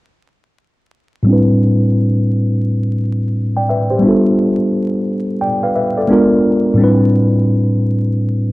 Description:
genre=hip hop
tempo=87 BPM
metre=4/4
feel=swing 62% on 16ths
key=A minor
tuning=A4 = 440 Hz
part: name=mellow tine electric piano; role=accompaniment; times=1.2-8.5 s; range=A2 to G5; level=-12 LUFS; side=equal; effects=medium stereo tremolo, cassette tape, low-pass filter
room=moderate spring reverb, RT60 2.4 s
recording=dark, warm production, vinyl crackle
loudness=-12 LUFS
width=side -19 dB against mid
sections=1.3-8.5 A section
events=filter sweep on tine electric piano 1.3-8.5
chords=1.3 Am11; 4.0 G9; 6.1 G#dim7; 6.8 Am11

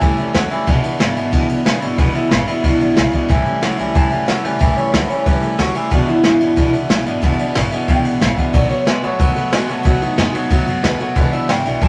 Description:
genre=rockabilly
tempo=183 BPM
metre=4/4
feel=straight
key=E mixolydian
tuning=A4 = 440 Hz
part: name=electric guitar through a small old amp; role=melody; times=0.0-11.9 s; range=D#4 to A5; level=-23 LUFS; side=equal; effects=none
part: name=picked steel-string acoustic guitar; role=accompaniment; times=0.0-11.9 s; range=E2 to F#4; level=-26 LUFS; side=equal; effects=none
part: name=twangy electric guitar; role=riff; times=0.0-11.9 s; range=E2 to G#3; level=-22 LUFS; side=equal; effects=none
part: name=upright bass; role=bass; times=0.0-11.9 s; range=E1 to G#2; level=-28 LUFS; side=equal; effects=none
part: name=jazz brush drum kit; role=drums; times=0.0-11.9 s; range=kick drum, ride cymbal, snare drum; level=-20 LUFS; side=equal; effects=none
room=moderate studio ambience, RT60 0.5 s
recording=none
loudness=-16 LUFS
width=mono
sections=0.0-11.9 A section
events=clean electric guitar solo 0.0-11.9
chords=0.0 A7; 0.7 E7; 3.3 A7; 5.9 E7; 8.5 B7; 11.2 E7

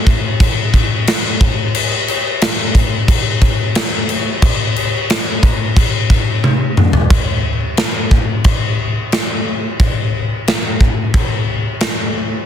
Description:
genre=rock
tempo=89 BPM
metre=4/4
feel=straight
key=none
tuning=none
part: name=big rock drum kit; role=drums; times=0.1-12.0 s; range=crash cymbal, kick drum, snare drum, toms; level=-13 LUFS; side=left 1 dB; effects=none
room=little or no reverb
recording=dense, heavily limited modern master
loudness=-13 LUFS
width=side -9 dB against mid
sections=0.0-7.1 A section; 7.1-12.5 B section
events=drum fill 6.4-7.1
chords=none

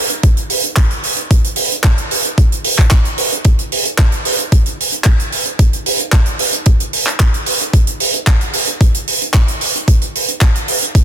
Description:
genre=nu-disco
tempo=112 BPM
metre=4/4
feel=straight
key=none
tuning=none
part: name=tight funk drum kit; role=drums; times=0.1-11.0 s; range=handclaps, hi-hat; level=-15 LUFS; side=right 2 dB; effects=none
part: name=electronic kick drum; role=drums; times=0.2-11.0 s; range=none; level=-11 LUFS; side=equal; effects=none
room=little or no reverb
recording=dense, heavily limited modern master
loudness=-11 LUFS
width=side -10 dB against mid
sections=0.0-11.0 A section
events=none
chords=none

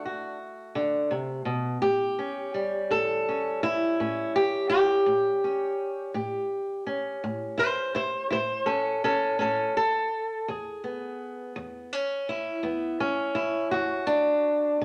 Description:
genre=acoustic country blues, solo or duo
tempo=55 BPM (dotted quarters)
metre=12/8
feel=straight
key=A mixolydian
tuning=A4 = 441 Hz
part: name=fingerpicked old ladder-braced acoustic guitar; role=solo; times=0.0-14.8 s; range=E2 to C5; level=-27 LUFS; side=equal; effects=none
room=wet studio reverb, RT60 0.9 s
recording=none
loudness=-27 LUFS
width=mono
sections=0.0-14.8 A section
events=none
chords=0.0 D7; 1.8 A7; 10.5 E7

